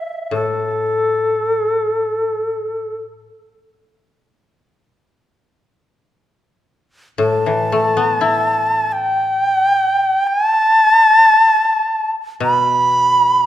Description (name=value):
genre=japanese traditional, Japanese chamber music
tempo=free time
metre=none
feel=none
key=unclear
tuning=A4 = 440 Hz
part: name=bright reedy shakuhachi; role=melody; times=0.0-3.0, 7.2-13.5 s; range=A4 to B5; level=-14 LUFS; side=equal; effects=none
part: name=koto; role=accompaniment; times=0.3-3.3, 7.2-13.5 s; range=A2 to E4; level=-20 LUFS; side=left 3 dB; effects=none
room=moderate recital hall reverb, RT60 1.6 s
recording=none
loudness=-13 LUFS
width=side -12 dB against mid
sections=0.0-6.0 A section; 6.0-13.5 A section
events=none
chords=none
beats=free time